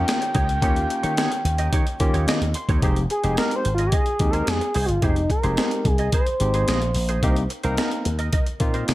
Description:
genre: early-eighties boogie funk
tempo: 109 BPM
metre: 4/4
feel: straight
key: F minor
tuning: A4 = 437 Hz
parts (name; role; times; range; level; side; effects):
- expressive synth lead; melody; 0.0-7.5 s; Eb4 to G5; -25 LUFS; equal; chorus
- barky tine electric piano; accompaniment; 0.0-8.9 s; Ab3 to C6; -28 LUFS; left 1 dB; fast stereo tremolo
- lush unison pad; sustained chords; 0.0-2.8 s; Eb3 to G4; -37 LUFS; equal; chorus
- direct-recorded clean electric guitar; riff; 0.0-8.9 s; Eb4 to Eb5; -32 LUFS; right 4 dB; ensemble chorus
- slap bass with an envelope filter; bass; 0.0-8.9 s; F1 to Eb3; -24 LUFS; equal; none
- breakbeat sampler-style drum kit; drums; 0.1-8.9 s; hi-hat, kick drum, snare drum; -23 LUFS; equal; gated reverb
room: light reverb, digital ambience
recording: none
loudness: -19 LUFS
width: side -16 dB against mid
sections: 0.0-2.8 A section; 2.8-8.9 B section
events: tine electric piano fill 2.0-2.8; analog synth lead solo 2.8-8.9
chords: 0.0 Eb7; 2.8 Fm7; 7.2 Cm7

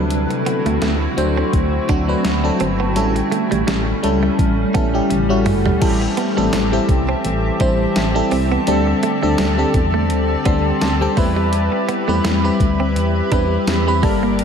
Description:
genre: 1980s-style pop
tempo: 84 BPM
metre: 4/4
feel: swing 55% on 16ths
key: D mixolydian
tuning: A4 = 443 Hz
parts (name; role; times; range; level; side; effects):
- FM electric piano; accompaniment; 0.0-14.4 s; F#3 to C6; -19 LUFS; left 1 dB; chorus, phaser
- granular cloud pad; sustained chords; 0.0-14.4 s; D3 to B5; -22 LUFS; equal; built-in reverb
- direct-recorded clean electric guitar; riff; 0.0-14.3 s; G3 to D4; -26 LUFS; right 6 dB; analog chorus, diffuse ambient delay
- solid FM bass; bass; 0.0-14.4 s; G1 to E2; -21 LUFS; equal; none
- clean 12-bit digital drum machine; drums; 0.1-14.4 s; crash cymbal, hi-hat, kick drum, snare drum, tambourine, toms; -21 LUFS; equal; none
- analog synth brass; stabs; 5.8-14.4 s; D3 to B4; -25 LUFS; left 2 dB; chorus
room: moderate lush hall reverb, RT60 2.5 s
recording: dreamy mix soaked in reverb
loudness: -15 LUFS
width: side -7 dB against mid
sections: 0.0-5.8 A section; 5.8-14.4 B section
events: drum fill 5.1-5.8; FM electric piano fill 10.1-11.5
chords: 0.0 D7; 3.0 A7; 5.8 Am7; 8.7 D7sus4; 11.2 Cmaj7/E

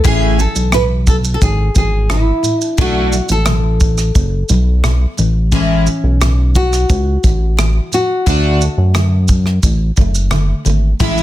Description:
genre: acoustic pop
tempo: 88 BPM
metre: 4/4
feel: straight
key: A major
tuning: A4 = 440 Hz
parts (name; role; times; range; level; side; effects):
- nylon-string guitar; melody; 0.0-11.2 s; C#4 to B4; -19 LUFS; left 1 dB; plate reverb
- picked plugged-in steel-string acoustic guitar; accompaniment; 0.0-11.2 s; A2 to G#4; -18 LUFS; left 1 dB; double-tracked left and right
- natural country drum kit; drums; 0.0-11.2 s; kick drum, rim click, shaker; -16 LUFS; equal; soft clipping on snare
- chorused synth bass; bass; 0.1-11.2 s; F#1 to F#2; -14 LUFS; equal; none
room: light reverb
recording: dense, heavily limited modern master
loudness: -11 LUFS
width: side -14 dB against mid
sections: 0.0-11.0 A section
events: none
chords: 0.1 Amaj7; 2.8 Bm7; 5.2 A; 8.3 D

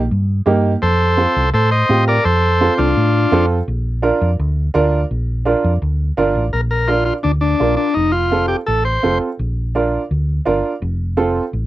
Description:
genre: latin, cumbia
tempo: 168 BPM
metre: 4/4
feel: straight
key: Bb major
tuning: A4 = 440 Hz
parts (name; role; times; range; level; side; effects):
- hollow-body short-scale fingered electric bass; bass; 0.0-11.7 s; F1 to A2; -18 LUFS; equal; none
- warm upright piano; accompaniment; 0.5-11.4 s; Bb3 to Bb4; -17 LUFS; right 4 dB; none
- overdriven combo organ; melody; 0.8-3.5, 6.5-9.2 s; D4 to Eb5; -16 LUFS; left 1 dB; none
room: little or no reverb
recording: dry, close 1970s-style studio recording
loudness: -14 LUFS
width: side -15 dB against mid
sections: 0.0-6.5 A section; 6.5-11.7 B section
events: none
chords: 0.0 Eb; 0.8 F7; 3.7 Bb; 8.0 F; 9.4 Bb; 10.8 F

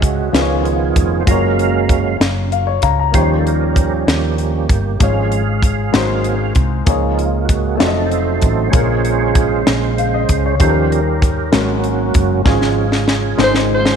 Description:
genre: slow gospel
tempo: 64 BPM (dotted quarters)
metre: 6/8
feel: straight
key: Db major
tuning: A4 = 440 Hz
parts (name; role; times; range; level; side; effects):
- warm concert grand piano; accompaniment; 0.0-14.0 s; Ab2 to Bb5; -20 LUFS; left 12 dB; none
- percussive tonewheel organ; sustained chords; 0.0-14.0 s; Db3 to F5; -18 LUFS; right 9 dB; slow rotary speaker, overdrive, chorus vibrato
- hollow-body short-scale fingered electric bass; bass; 0.0-14.0 s; F1 to Eb2; -19 LUFS; equal; none
- crisp fusion drum kit; drums; 0.0-14.0 s; hi-hat, kick drum, snare drum; -17 LUFS; equal; none
- growling soprano saxophone; melody; 13.4-14.0 s; C5; -16 LUFS; equal; none
room: light reverb, small room ambience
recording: 1960s-style stereo with parts hard left and right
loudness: -13 LUFS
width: side -7 dB against mid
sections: 0.0-14.0 A section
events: tonewheel organ solo 0.0-14.0; grand piano fill 2.2-3.1; drum fill 12.5-14.0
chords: 0.3 Db7; 1.3 Gbmaj7; 3.1 Eb7; 5.0 Db/Ab; 5.9 Ab7; 6.9 Db6; 7.8 F7b9; 8.7 Bbm7; 10.6 Eb7; 11.5 Ab9sus4; 12.5 Db/Ab; 13.4 Ab

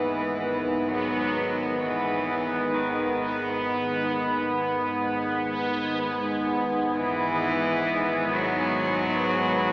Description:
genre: dark ambient drone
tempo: free time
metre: none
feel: none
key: G# minor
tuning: A4 = 438 Hz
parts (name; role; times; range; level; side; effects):
- bright cello; melody; 0.0-9.7 s; D#3 to F#3; -28 LUFS; equal; shimmer reverb, diffuse ambient delay
- deep dark ambient pad; sustained chords; 0.0-9.7 s; G#2 to C#5; -35 LUFS; equal; chorus, built-in reverb, shimmer reverb
- organ-like drone; drone; 0.0-9.7 s; G#1 to G#2; -31 LUFS; equal; ensemble chorus, built-in reverb
- bubbling stepped-filter texture; texture; 0.0-9.7 s; B3; -26 LUFS; equal; chorus, built-in reverb, shimmer reverb
room: wet huge ambient reverb, RT60 7.2 s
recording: AM radio sound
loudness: -23 LUFS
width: side -21 dB against mid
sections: 0.0-9.7 A section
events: fade-in on ambient pad 0.0-9.7; fade-in on cello 0.0-9.7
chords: 0.0 G#m; 6.4 Badd9/G#

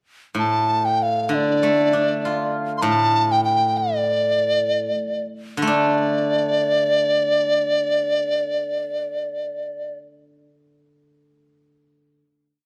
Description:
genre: chinese traditional, Chinese chamber ensemble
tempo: 67-98 BPM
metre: 2/4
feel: straight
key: D yu mode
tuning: A4 = 441 Hz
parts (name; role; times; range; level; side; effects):
- steel-string zither; accompaniment; 0.3-12.2 s; A2 to F4; -26 LUFS; equal; none
- mellow hollow large dizi; melody; 0.4-10.0 s; D5 to C6; -22 LUFS; equal; none
room: light reverb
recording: close, detailed microphones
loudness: -21 LUFS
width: mono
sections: 0.4-5.7 A section; 5.7-9.2 final chord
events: slowing down 2.8-5.7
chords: none

